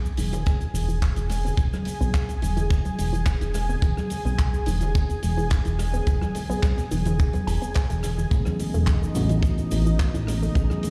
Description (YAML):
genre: nu-disco, nu disco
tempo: 107 BPM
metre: 4/4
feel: straight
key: E major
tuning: A4 = 440 Hz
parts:
  - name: lush unison pad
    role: sustained chords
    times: 0.0-10.9 s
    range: D#4 to G#5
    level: -36 LUFS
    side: equal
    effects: chorus, sidechain pumping
  - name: analog pluck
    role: arpeggios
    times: 0.0-10.9 s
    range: C#3 to G#4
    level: -36 LUFS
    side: equal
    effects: chorus, sidechain pumping, analog delay
  - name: chorused synth bass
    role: bass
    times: 0.0-10.7 s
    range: E1 to B1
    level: -27 LUFS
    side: equal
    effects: none
  - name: tight funk drum kit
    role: drums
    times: 0.1-10.9 s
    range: handclaps, hi-hat, rim click, shaker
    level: -40 LUFS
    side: equal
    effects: none
  - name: congas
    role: percussion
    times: 0.2-10.9 s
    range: none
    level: -35 LUFS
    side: equal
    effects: none
  - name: kick drum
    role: drums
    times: 0.5-10.7 s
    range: none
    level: -25 LUFS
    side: equal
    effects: none
  - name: tine electric piano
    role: accompaniment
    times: 8.3-10.9 s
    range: E3 to G#4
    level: -30 LUFS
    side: equal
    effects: sidechain pumping, tape echo
room: small room ambience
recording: played on a big sound system in a bare room, stone room reverb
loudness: -24 LUFS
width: mono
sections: 0.0-10.9 A section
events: filter sweep on synth arpeggio sound 0.0-10.9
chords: 0.0 Emaj7; 8.3 Amaj9